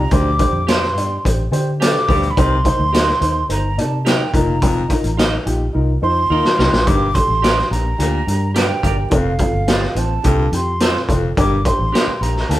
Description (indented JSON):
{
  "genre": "uptempo 1960s-style soul",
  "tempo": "107 BPM",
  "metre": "4/4",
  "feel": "straight",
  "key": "G minor",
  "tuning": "A4 = 440 Hz",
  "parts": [
    { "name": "breathy concert flute", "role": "melody", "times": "0.0-12.6 s", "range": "F5 to D6", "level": "-21 LUFS", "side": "right 1 dB", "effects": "none" },
    { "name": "growling baritone saxophone", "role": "riff", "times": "0.0-12.6 s", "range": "D2 to C3", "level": "-25 LUFS", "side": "left 4 dB", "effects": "none" },
    { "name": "vintage muted fingered electric bass", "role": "bass", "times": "0.0-12.6 s", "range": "F1 to D3", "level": "-20 LUFS", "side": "equal", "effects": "none" },
    { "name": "dark upright piano", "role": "accompaniment", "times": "0.1-12.6 s", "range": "C4 to Eb5", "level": "-23 LUFS", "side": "equal", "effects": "none" },
    { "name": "raw garage drum kit", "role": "drums", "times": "0.1-12.6 s", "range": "hi-hat, kick drum, snare drum", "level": "-18 LUFS", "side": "equal", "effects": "none" },
    { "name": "clean electric guitar", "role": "stabs", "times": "0.7-12.1 s", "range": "C4 to Eb5", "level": "-26 LUFS", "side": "right 4 dB", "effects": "none" }
  ],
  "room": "moderate stone room reverb, RT60 1.1 s",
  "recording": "band playing live in one room",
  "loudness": "-14 LUFS",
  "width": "side -14 dB against mid",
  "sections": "0.0-6.9 A section; 6.9-12.6 B section",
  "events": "drum fill 5.7-6.9",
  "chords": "0.1 D7sus4; 2.4 Cm7; 4.3 F7sus4; 6.9 Gm; 9.1 F; 11.4 Gm"
}